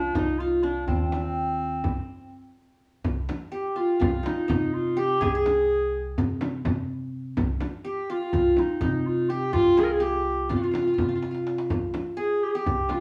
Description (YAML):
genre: Turkish makam ensemble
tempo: 249 BPM (eighths)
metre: 9/8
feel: straight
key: C makam ussak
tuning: A4 = 440 Hz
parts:
  - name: mellow clarinet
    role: melody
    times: 0.0-13.0 s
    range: C4 to Bb4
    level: -27 LUFS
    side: equal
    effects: none
  - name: qanun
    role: second line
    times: 0.0-13.0 s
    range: C4 to Ab4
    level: -32 LUFS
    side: equal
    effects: none
  - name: upright bass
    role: bass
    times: 0.0-12.9 s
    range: C2 to C3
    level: -34 LUFS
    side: equal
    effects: none
  - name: darbuka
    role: percussion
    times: 0.1-13.0 s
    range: none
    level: -36 LUFS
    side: equal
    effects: none
  - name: frame drum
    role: percussion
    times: 0.1-13.0 s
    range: none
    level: -33 LUFS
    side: equal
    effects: none
room: wet studio reverb, RT60 0.8 s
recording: band playing live in one room, small room ambience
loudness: -26 LUFS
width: mono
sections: 0.0-3.0 A section; 3.0-13.0 B section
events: break 2.0-3.0; drum fill 11.2-11.7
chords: none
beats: 0.15 0.40 0.64 | 0.88 1.12 1.36 1.60 1.84 2.08 2.33 2.57 2.81 | 3.05 3.29 3.53 3.77 4.01 4.25 4.49 4.73 4.97 | 5.21 5.46 5.70 5.94 6.18 6.42 6.66 6.90 7.14 | 7.38 7.62 7.86 8.10 8.34 8.58 8.82 9.06 9.30 | 9.54 9.78 10.03 10.27 10.51 10.74 10.99 11.23 11.47 | 11.71 11.95 12.19 12.43 12.67 12.91